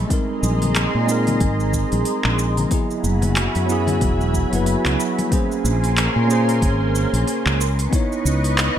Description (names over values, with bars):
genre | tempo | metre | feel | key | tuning
sunset chillout | 92 BPM | 4/4 | swing 58% on 16ths | unclear | A4 = 436 Hz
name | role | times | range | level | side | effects
lush unison pad | sustained chords | 0.0-8.8 s | Db4 to Db6 | -25 LUFS | right 1 dB | chorus, phaser
mellow fretless electric bass | bass | 0.0-8.7 s | Fb1 to Bb2 | -20 LUFS | equal | tube saturation
bell-like tine electric piano | accompaniment | 0.1-8.8 s | Gb3 to Db5 | -23 LUFS | right 1 dB | auto-pan, ping-pong delay
electronic kick drum | drums | 0.1-8.1 s | none | -21 LUFS | equal | none
smooth R&B drum kit | drums | 0.1-8.7 s | cabasa, handclaps, hi-hat | -25 LUFS | right 1 dB | none
congas | percussion | 0.4-5.3 s | none | -28 LUFS | left 2 dB | none
room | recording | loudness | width
light reverb, digital ambience | none | -17 LUFS | side -10 dB against mid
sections
0.0-5.3 A section; 5.3-8.8 B section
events
none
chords
0.0 Bb9sus4; 2.7 Gb9sus4; 5.3 Bbm9; 7.6 Dbm9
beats
| 0.10 0.75 1.40 2.06 | 2.71 3.36 4.01 4.67 | 5.32 5.97 6.62 7.27 | 7.92 8.58